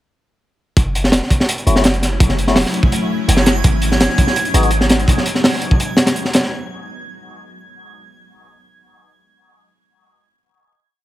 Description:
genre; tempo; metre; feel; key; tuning
drum and bass, jungle; 167 BPM; 4/4; straight; G# phrygian; A4 = 440 Hz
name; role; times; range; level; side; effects
granular cloud pad; sustained chords; 1.7-5.1 s; F#3 to E4; -24 LUFS; left 1 dB; built-in reverb
warm 808-style bass; bass; 0.8-5.1 s; E1 to G#1; -17 LUFS; equal; none
crunchy breakbeat drum kit; drums; 0.8-6.5 s; hi-hat, kick drum, snare drum; -14 LUFS; equal; none
backwards swelling texture; texture; 2.1-6.5 s; G#6; -27 LUFS; right 3 dB; built-in reverb
tonewheel organ; stabs; 1.7-4.7 s; A3 to G#4; -24 LUFS; left 3 dB; slow rotary speaker, dub echo
room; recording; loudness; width
studio reverb; none; -13 LUFS; side -15 dB against mid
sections
0.8-6.5 drop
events
drop 0.8-6.5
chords
0.8 F#m7; 3.6 G#m7

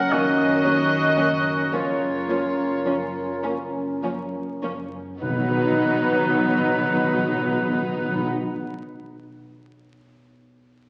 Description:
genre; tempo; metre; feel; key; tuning
cinematic; 33-40 BPM (dotted quarters); 6/8; rubato; B lydian; A4 = 441 Hz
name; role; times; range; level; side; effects
warm symphonic violin section; melody; 0.0-8.2 s; B4 to F#5; -31 LUFS; equal; none
mellow oboe; second line; 0.0-8.3 s; E#4 to B4; -28 LUFS; equal; none
dark concert grand piano; accompaniment; 0.0-10.9 s; B1 to F#5; -36 LUFS; equal; none
mellow French horn section; sustained chords; 0.0-8.2 s; B3 to A#4; -29 LUFS; equal; none
warm symphonic cello section; bass; 0.0-8.3 s; C#3 to B3; -37 LUFS; equal; none
timpani; percussion; 0.0-0.1, 5.2-8.3 s; B2; -30 LUFS; equal; none
warm symphonic violin section; second line; 0.1-8.2 s; B3 to D#4; -32 LUFS; equal; none
dark symphonic viola section; accompaniment; 0.1-8.2 s; E#3 to B3; -33 LUFS; equal; none
dark symphonic double bass section; bass; 0.1-8.2 s; F#1 to B1; -43 LUFS; equal; none
room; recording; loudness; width
wet concert hall reverb, RT60 2.0 s; very old 78 rpm record, vinyl crackle, nothing above 10.6 kHz; -23 LUFS; mono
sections
0.0-5.2 A section; 5.2-8.6 B section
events
slowing down 0.0-5.2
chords
0.0 F#maj7; 5.2 B

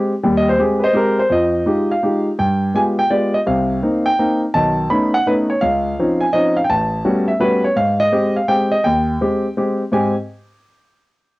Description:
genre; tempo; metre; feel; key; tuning
jazz; 167 BPM; 3/4; swing 66% on 8ths; Ab major; A4 = 440 Hz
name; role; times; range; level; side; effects
warm grand piano; solo; 0.0-10.1 s; A1 to B5; -14 LUFS; equal; cassette tape
room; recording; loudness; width
light reverb; home recording on cassette; -14 LUFS; side -19 dB against mid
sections
0.0-1.3 A section; 1.3-9.9 B section; 9.9-11.0 C section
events
grand piano solo 0.0-1.3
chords
0.0 Abmaj7; 1.3 Fm9; 2.4 G7b9; 3.5 Cm7; 4.5 B9; 5.6 Dbmaj9; 6.7 A13; 7.8 Abmaj7

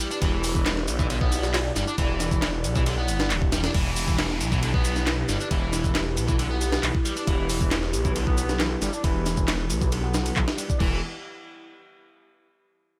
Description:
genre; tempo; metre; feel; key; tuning
breakbeat, breaks; 136 BPM; 4/4; straight; E minor; A4 = 440 Hz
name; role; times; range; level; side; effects
dark analog pad; sustained chords; 0.0-11.0 s; E4 to D5; -36 LUFS; equal; chorus, phaser, sidechain pumping
biting overdriven guitar; riff; 0.0-11.0 s; D3 to D4; -34 LUFS; equal; tube saturation, low-pass filter, dub echo
breakbeat sampler-style drum kit; drums; 0.0-10.9 s; crash cymbal, hi-hat, kick drum, ride cymbal, snare drum; -28 LUFS; equal; studio reverb
electronic shaker and handclaps; drums; 0.0-10.8 s; none; -35 LUFS; equal; studio reverb
phased detuned saw bass; bass; 0.2-11.0 s; D1 to B1; -30 LUFS; equal; phaser
downlifter; sound effects; 3.7-7.3 s; none; -39 LUFS; equal; none
room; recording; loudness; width
little or no reverb; none; -25 LUFS; mono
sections
0.0-3.7 A section; 3.7-10.8 B section; 10.8-12.6 C section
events
drop 0.0-3.7; filter sweep on overdriven electric guitar 3.7-10.8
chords
0.0 Em

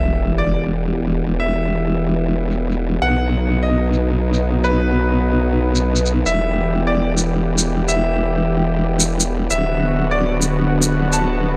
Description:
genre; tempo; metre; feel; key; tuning
heavy wobble dubstep; 148 BPM; 4/4; half-time; E minor; A4 = 440 Hz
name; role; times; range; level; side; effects
bright concert grand piano; melody; 0.0-11.6 s; B4 to A5; -26 LUFS; equal; dub echo
lush unison pad; sustained chords; 0.0-11.6 s; D3 to G4; -23 LUFS; equal; chorus
formant-sweep wobble bass; bass; 0.0-11.6 s; D1 to B1; -22 LUFS; equal; chorus, overdrive
sub drop; sound effects; 0.0-1.4 s; none; -26 LUFS; equal; none
shaker; drums; 0.7-11.2 s; none; -22 LUFS; equal; overdrive, low-pass filter on hats, low-pass filter on cymbals, low-pass filter on perc, low-pass filter on snare, low-pass filter on room
room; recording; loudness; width
light reverb, digital ambience; none; -18 LUFS; mono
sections
0.0-11.6 A section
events
impact 0.0-1.4; filter sweep on drum 0.0-11.6; filter sweep on analog synth pad 0.0-11.6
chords
0.0 Em; 3.0 B; 6.3 Em; 9.5 Bm/D

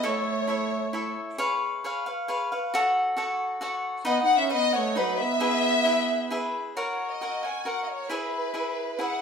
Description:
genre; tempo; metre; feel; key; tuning
mexican folk, mariachi; 134 BPM; 3/4; straight; E major; A4 = 439 Hz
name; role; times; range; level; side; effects
warm studio violin section; melody; 0.0-1.2, 4.1-9.2 s; B4 to G#5; -26 LUFS; left 2 dB; none
mellow trumpet; second line; 0.0-1.2, 4.1-6.5 s; F#3 to D#4; -30 LUFS; right 6 dB; none
cavaquinho; accompaniment; 0.0-9.2 s; D#4 to F#5; -27 LUFS; left 1 dB; none
room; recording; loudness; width
moderate large studio reverb, RT60 1.2 s; band playing live in one room; -24 LUFS; side -6 dB against mid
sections
0.0-6.8 A section; 6.8-9.2 B section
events
none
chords
0.0 A; 1.4 C#7; 2.7 F#m; 4.1 B; 5.4 E; 6.8 F#; 8.1 E

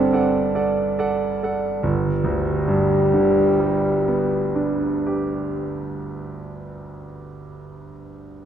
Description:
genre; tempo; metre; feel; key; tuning
classical, romantic duo for French horn and grand piano; 52 BPM; 4/4; rubato; G major; A4 = 440 Hz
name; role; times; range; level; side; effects
mellow French horn; melody; 0.0-5.9 s; G3 to C4; -21 LUFS; left 1 dB; none
warm concert grand piano; accompaniment; 0.0-8.5 s; G1 to F#5; -22 LUFS; right 3 dB; none
room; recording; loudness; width
wet scoring stage reverb, RT60 1.4 s; dark, warm production; -18 LUFS; side -9 dB against mid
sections
0.0-1.8 A section; 1.8-6.5 B section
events
slowing down 0.0-1.8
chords
0.0 D7/G; 1.8 G

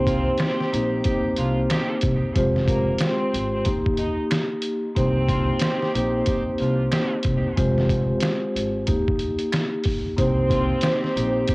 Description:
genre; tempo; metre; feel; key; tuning
hip hop, boom-bap hip-hop; 92 BPM; 4/4; swing 62% on 16ths; C minor; A4 = 440 Hz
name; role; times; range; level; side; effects
dark studio violin section; melody; 0.0-11.5 s; Bb3 to Eb5; -30 LUFS; equal; high-pass filter, low-pass filter, cassette tape, analog delay
vibraphone with soft mallets; accompaniment; 0.0-11.5 s; Ab3 to C5; -23 LUFS; equal; cassette tape, high-pass filter, low-pass filter
upright bass; bass; 0.0-11.4 s; F1 to Eb2; -25 LUFS; equal; none
clear horn section; stabs; 0.1-11.5 s; Bb3 to G4; -34 LUFS; right 1 dB; high-pass filter, low-pass filter, analog delay
trip hop sampler-style drum kit; drums; 0.1-11.5 s; hi-hat, kick drum, snare drum; -25 LUFS; equal; none
finger snaps; percussion; 0.4-11.0 s; none; -37 LUFS; right 2 dB; none
room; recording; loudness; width
small room ambience; home recording on cassette; -20 LUFS; side -23 dB against mid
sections
0.0-11.5 A section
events
none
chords
0.0 Cm7; 2.4 Fmadd9; 3.7 Eb; 5.0 Cm7; 7.6 Fmadd9; 8.9 Eb; 10.2 Cm7

